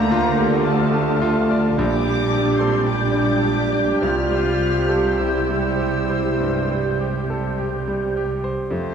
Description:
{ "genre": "classical, romantic movement for piano and orchestra", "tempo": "50-61 BPM", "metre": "4/4", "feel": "rubato", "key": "unclear", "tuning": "A4 = 442 Hz", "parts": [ { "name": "bright concert grand piano", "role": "melody", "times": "0.0-8.9 s", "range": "Bb1 to D5", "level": "-24 LUFS", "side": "right 1 dB", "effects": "none" }, { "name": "muted chamber violin section", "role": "melody", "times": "0.0-8.9 s", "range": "F5 to F6", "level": "-31 LUFS", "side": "left 6 dB", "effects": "none" }, { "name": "mellow flute section", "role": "second line", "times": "0.0-8.9 s", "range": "C5 to G6", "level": "-29 LUFS", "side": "left 3 dB", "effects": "none" }, { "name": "mellow oboe", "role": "second line", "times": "0.0-8.3 s", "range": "C5 to D5", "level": "-33 LUFS", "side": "right 1 dB", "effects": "none" }, { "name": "muted chamber violin section", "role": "second line", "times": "0.0-8.9 s", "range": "F4 to D5", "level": "-33 LUFS", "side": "left 2 dB", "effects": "none" }, { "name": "dark bassoon", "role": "accompaniment", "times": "0.0-8.9 s", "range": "G3 to A3", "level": "-28 LUFS", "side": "right 5 dB", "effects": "none" }, { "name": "muted chamber viola section", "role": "accompaniment", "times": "0.0-8.9 s", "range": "G3 to C5", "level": "-29 LUFS", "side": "left 1 dB", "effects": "none" }, { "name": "mellow French horn section", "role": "sustained chords", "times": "0.0-8.9 s", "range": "A3 to F4", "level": "-24 LUFS", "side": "left 2 dB", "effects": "none" }, { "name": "muted chamber cello section", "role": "bass", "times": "0.0-8.9 s", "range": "F2 to D3", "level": "-27 LUFS", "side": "right 3 dB", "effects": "none" }, { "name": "muted chamber double bass section", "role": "bass", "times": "0.0-8.9 s", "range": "F1 to D2", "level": "-27 LUFS", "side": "right 4 dB", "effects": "none" } ], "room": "wet scoring stage reverb, RT60 1.8 s", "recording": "dark, warm production", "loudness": "-18 LUFS", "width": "side -7 dB against mid", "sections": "0.0-8.7 A section", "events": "none", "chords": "0.0 Dm; 1.8 Gm/Bb; 4.0 C" }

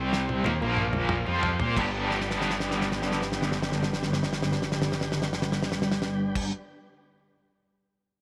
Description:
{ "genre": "psychedelic rock", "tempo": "175 BPM (eighths)", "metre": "7/8", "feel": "straight", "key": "G mixolydian", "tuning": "A4 = 441 Hz", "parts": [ { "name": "tonewheel organ", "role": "sustained chords", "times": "0.0-6.5 s", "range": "F3 to G5", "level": "-39 LUFS", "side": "equal", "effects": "slow rotary speaker" }, { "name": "cranked stack guitar", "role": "riff", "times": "0.0-6.5 s", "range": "G2 to G4", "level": "-30 LUFS", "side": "equal", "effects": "overdrive, tremolo" }, { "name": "growling picked electric bass", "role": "bass", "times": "0.0-6.5 s", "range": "G1 to Bb2", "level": "-37 LUFS", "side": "equal", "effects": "overdrive" }, { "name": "damped 70s drum kit", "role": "drums", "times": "0.1-6.5 s", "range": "crash cymbal, kick drum, snare drum, toms", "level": "-34 LUFS", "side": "equal", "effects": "none" }, { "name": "congas", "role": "percussion", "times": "0.5-6.5 s", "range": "none", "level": "-42 LUFS", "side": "equal", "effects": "none" } ], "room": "moderate echo chamber reverb, RT60 2.1 s", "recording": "none", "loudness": "-28 LUFS", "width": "mono", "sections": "0.0-1.8 A section; 1.8-6.6 B section", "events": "drum fill 0.0-1.8, 2.1-6.4; slowing down 0.0-1.8", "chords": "0.0 C5; 0.6 Bb5; 1.3 C5; 1.8 G" }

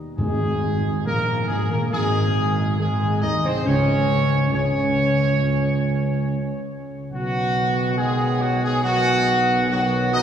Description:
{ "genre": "classical, ceremonial fanfare", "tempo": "69 BPM", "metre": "4/4", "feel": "straight", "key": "unclear", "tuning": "A4 = 440 Hz", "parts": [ { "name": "warm trumpet section", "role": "melody", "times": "0.2-10.2 s", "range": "Gb4 to Eb5", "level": "-23 LUFS", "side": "right 1 dB", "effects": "none" }, { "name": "clear trombone section", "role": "sustained chords", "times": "0.2-10.2 s", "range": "Gb3 to Eb4", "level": "-30 LUFS", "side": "right 1 dB", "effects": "none" }, { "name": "warm French horn section", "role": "sustained chords", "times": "0.2-10.2 s", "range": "Eb3 to Eb4", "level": "-28 LUFS", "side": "left 1 dB", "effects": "none" }, { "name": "mellow tuba", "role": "bass", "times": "0.2-10.2 s", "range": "Ab1 to Eb2", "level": "-22 LUFS", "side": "right 1 dB", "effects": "none" }, { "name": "timpani", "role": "percussion", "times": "0.2-1.4 s", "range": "Ab2", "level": "-30 LUFS", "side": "equal", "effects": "none" } ], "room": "wet cathedral reverb, RT60 5.1 s", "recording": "recorded in a church or concert hall, small room reverb", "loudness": "-18 LUFS", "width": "side -8 dB against mid", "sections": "0.2-10.2 A section", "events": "none", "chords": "0.2 Ab; 3.7 N.C.; 7.1 Cb" }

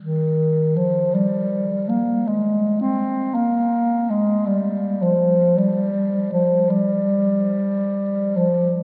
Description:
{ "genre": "classical, free, expressive piece for unaccompanied bass clarinet", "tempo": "54 BPM", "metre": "4/4", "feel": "rubato", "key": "unclear", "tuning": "A4 = 441 Hz", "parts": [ { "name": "mellow bass clarinet", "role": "solo", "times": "0.0-8.7 s", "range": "Eb3 to C4", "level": "-20 LUFS", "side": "equal", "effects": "none" } ], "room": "wet cathedral reverb, RT60 4.2 s", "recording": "heard from further back in the room", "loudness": "-20 LUFS", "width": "mono", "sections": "0.0-8.8 A section", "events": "none", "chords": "none" }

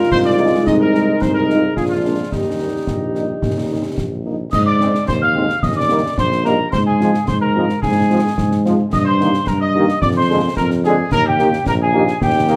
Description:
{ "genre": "military-style march for wind band", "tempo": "109 BPM", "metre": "2/4", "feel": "straight", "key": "Eb major", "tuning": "A4 = 440 Hz", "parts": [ { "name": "dark trumpet section", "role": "melody", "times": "0.0-12.6 s", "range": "Eb4 to F5", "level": "-26 LUFS", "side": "equal", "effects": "none" }, { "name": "warm euphonium", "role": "second line", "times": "0.0-4.2 s", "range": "Eb4 to G4", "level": "-21 LUFS", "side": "equal", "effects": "none" }, { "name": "mellow trombone section", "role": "sustained chords", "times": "0.0-12.6 s", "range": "D3 to Eb4", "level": "-26 LUFS", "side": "equal", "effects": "none" }, { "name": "warm tuba", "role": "bass", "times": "0.1-12.6 s", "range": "Bb1 to Ab2", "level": "-21 LUFS", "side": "equal", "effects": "none" }, { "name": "concert snare drum, clash cymbals and concert bass drum", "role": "drums", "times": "0.1-12.6 s", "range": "none", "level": "-26 LUFS", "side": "equal", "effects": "none" }, { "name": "warm French horn section", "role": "accompaniment", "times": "0.4-12.6 s", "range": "F3 to Ab4", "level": "-24 LUFS", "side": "equal", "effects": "none" }, { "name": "hollow wooden piccolo", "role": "second line", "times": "4.5-12.6 s", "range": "G5 to F6", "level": "-22 LUFS", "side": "equal", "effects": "none" } ], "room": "moderate large studio reverb, RT60 0.9 s", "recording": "none", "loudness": "-17 LUFS", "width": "mono", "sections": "0.0-4.5 A section; 4.5-12.6 B section", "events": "none", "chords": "0.1 Ab/C; 1.2 Fm7/C; 1.8 Bb7; 2.3 Eb; 4.5 Ab; 5.6 Eb; 6.7 Fm/Ab; 8.9 Eb/G; 10.0 Bb7/F; 11.1 Eb" }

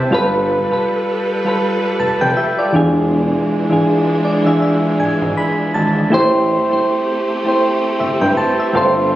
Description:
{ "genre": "R&B", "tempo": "80 BPM", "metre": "4/4", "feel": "swing 58% on 16ths", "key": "unclear", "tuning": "A4 = 440 Hz", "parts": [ { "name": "soft electric-piano-like synth keys", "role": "accompaniment", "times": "0.0-9.2 s", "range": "C3 to B5", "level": "-14 LUFS", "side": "equal", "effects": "chorus" }, { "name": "warm studio string section", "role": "sustained chords", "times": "0.0-9.2 s", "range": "E3 to B4", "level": "-23 LUFS", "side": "right 2 dB", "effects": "none" }, { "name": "fat analog bass", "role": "bass", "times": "0.0-9.2 s", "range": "E1 to A1", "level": "-20 LUFS", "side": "equal", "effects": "none" } ], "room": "light reverb, studio reverb", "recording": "recorded on a phone in the room", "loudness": "-13 LUFS", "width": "side -14 dB against mid", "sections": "0.0-9.2 A section", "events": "synth keys fill 3.9-6.1", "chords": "0.1 G9; 2.7 E7b9; 6.1 Am7" }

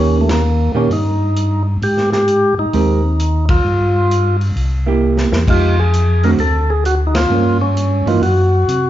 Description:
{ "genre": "soul jazz organ trio", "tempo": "131 BPM", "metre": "4/4", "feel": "swing 66% on 8ths", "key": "F minor", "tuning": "A4 = 443 Hz", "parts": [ { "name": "percussive tonewheel organ", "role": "melody", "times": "0.0-8.9 s", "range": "A3 to Bb4", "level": "-17 LUFS", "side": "left 1 dB", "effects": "slow rotary speaker" }, { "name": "vintage hollow-body jazz guitar", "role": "accompaniment", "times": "0.0-8.2 s", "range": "D3 to Bb4", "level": "-18 LUFS", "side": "right 5 dB", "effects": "none" }, { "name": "mellow tonewheel organ", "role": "bass", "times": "0.0-8.9 s", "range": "C2 to C3", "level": "-16 LUFS", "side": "equal", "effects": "slow rotary speaker" }, { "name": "vintage drum kit", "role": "drums", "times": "0.3-8.8 s", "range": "crash cymbal, hi-hat, kick drum, ride cymbal, snare drum", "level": "-23 LUFS", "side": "equal", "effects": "none" } ], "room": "wet large studio reverb, RT60 0.9 s", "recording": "heard from further back in the room, nothing above 7.6 kHz", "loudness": "-12 LUFS", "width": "side -12 dB against mid", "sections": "0.0-8.9 A section", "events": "band accent 0.2, 3.4, 7.1; drum fill 5.0-5.5", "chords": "0.0 Eb7; 1.8 Abmaj9; 3.6 Fsus2/G; 4.6 C7; 5.5 Fm9; 6.4 Dm; 7.3 Gm7b5; 8.2 N.C." }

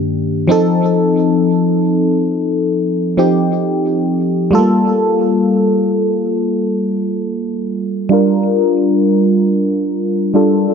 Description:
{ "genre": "R&B", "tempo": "67 BPM", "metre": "4/4", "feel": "swing 58% on 16ths", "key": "G minor", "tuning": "A4 = 440 Hz", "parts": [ { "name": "FM electric piano", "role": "solo", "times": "0.0-10.7 s", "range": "G2 to Bb4", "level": "-12 LUFS", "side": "equal", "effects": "chorus, phaser, low-pass filter, ping-pong delay" } ], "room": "light reverb", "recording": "dark, warm production", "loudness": "-12 LUFS", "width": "side -6 dB against mid", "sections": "0.0-8.1 A section; 8.1-10.7 B section", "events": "none", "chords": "0.5 F7; 4.5 Gm9; 8.1 Gm7" }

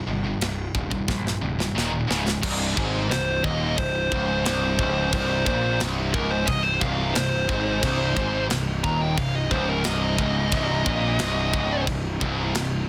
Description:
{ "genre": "heavy metal", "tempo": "89 BPM", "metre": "4/4", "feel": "straight", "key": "C phrygian", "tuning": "A4 = 439 Hz", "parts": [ { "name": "heavy high-gain guitar", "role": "riff", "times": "0.0-12.8 s", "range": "C2 to Eb3", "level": "-32 LUFS", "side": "equal", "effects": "distortion" }, { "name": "sludgy distorted guitar", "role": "riff", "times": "0.0-12.8 s", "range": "C2 to Eb3", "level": "-32 LUFS", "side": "equal", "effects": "overdrive" }, { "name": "fuzz picked electric bass", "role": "bass", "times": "0.1-12.9 s", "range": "C1 to Bb1", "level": "-31 LUFS", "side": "equal", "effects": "overdrive" }, { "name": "tight metal drum kit", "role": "drums", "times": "0.4-12.7 s", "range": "crash cymbal, kick drum, ride cymbal, snare drum", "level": "-31 LUFS", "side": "equal", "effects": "soft clipping on kick, soft clipping on snare" }, { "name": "bright studio string section", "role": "sustained chords", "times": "2.4-12.9 s", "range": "C3 to Eb4", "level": "-41 LUFS", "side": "equal", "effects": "none" }, { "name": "fuzz guitar", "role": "riff", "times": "2.4-12.8 s", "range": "C2 to Bb2", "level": "-36 LUFS", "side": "equal", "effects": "none" }, { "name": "high-gain lead guitar", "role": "melody", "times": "3.1-11.8 s", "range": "Bb4 to Bb5", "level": "-29 LUFS", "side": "equal", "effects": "distortion" } ], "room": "light reverb", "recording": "dense, heavily limited modern master", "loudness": "-24 LUFS", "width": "mono", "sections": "0.0-2.4 A section; 2.4-12.9 B section", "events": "drum fill 1.1-2.4; lead electric guitar solo 2.4-12.9", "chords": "0.0 Cm; 1.8 Eb5; 2.1 Db5; 2.4 Cm" }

